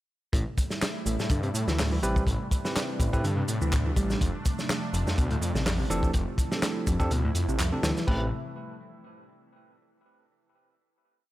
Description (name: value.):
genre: breakbeat, breaks.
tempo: 124 BPM.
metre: 4/4.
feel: swing 55% on 16ths.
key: A minor.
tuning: A4 = 441 Hz.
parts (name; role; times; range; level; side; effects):
phased analog pad; sustained chords; 0.3-8.3 s; C3 to E4; -35 LUFS; right 1 dB; phaser, chorus, sidechain pumping.
picked electric bass; riff; 0.3-8.3 s; F2 to G3; -32 LUFS; equal; vintage 12-bit sampler grit, tape echo.
detuned saw bass; bass; 0.3-8.3 s; F1 to A2; -29 LUFS; equal; tube saturation.
crunchy breakbeat drum kit; drums; 0.3-8.2 s; crash cymbal, hi-hat, kick drum, snare drum; -29 LUFS; equal; none.
electronic shaker and handclaps; drums; 0.3-8.1 s; none; -36 LUFS; equal; none.
bell-like tine electric piano; stabs; 2.0-8.3 s; C4 to B4; -35 LUFS; right 1 dB; tape echo.
room: small room reverb.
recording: none.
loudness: -25 LUFS.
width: side -16 dB against mid.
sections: 0.3-8.1 drop; 8.1-10.0 final chord.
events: drop 0.3-8.1.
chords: 0.3 Am7; 4.2 F6; 8.1 Am7.